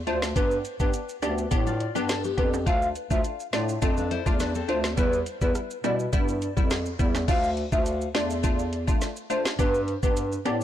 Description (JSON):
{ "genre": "dancehall", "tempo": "104 BPM", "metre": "4/4", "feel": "straight", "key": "unclear", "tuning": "A4 = 440 Hz", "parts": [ { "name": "hollow clarinet-like synth lead", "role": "melody", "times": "0.1-10.6 s", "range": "B4 to F5", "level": "-30 LUFS", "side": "equal", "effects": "chorus, ping-pong delay" }, { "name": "wavetable chord stab", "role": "accompaniment", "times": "0.1-10.6 s", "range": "G3 to G4", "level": "-31 LUFS", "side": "left 2 dB", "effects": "none" }, { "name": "mellow bass clarinet", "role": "bass", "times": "0.1-10.6 s", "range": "D2 to B2", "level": "-29 LUFS", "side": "right 1 dB", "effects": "none" }, { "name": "island pop drum kit", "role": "drums", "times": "0.1-10.6 s", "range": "crash cymbal, hi-hat, kick drum, rim click, snare drum", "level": "-27 LUFS", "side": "equal", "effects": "vintage 12-bit sampler grit" }, { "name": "maracas and timbales", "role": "percussion", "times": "0.2-10.6 s", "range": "none", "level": "-38 LUFS", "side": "right 7 dB", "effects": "none" }, { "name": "nylon-string guitar", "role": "arpeggios", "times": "1.7-5.0 s", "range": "B3 to D5", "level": "-32 LUFS", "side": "left 9 dB", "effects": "none" } ], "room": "small room ambience", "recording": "blown-out, overdriven recording, overdrive", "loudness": "-23 LUFS", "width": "side -11 dB against mid", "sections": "0.0-7.3 A section; 7.3-10.6 B section", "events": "none", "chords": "0.4 G; 2.7 Dm; 5.0 Em; 7.3 Dm; 9.6 G", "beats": "| 0.36 0.94 1.51 2.09 | 2.67 3.24 3.82 4.40 | 4.97 5.55 6.13 6.71 | 7.28 7.86 8.44 9.01 | 9.59 10.17" }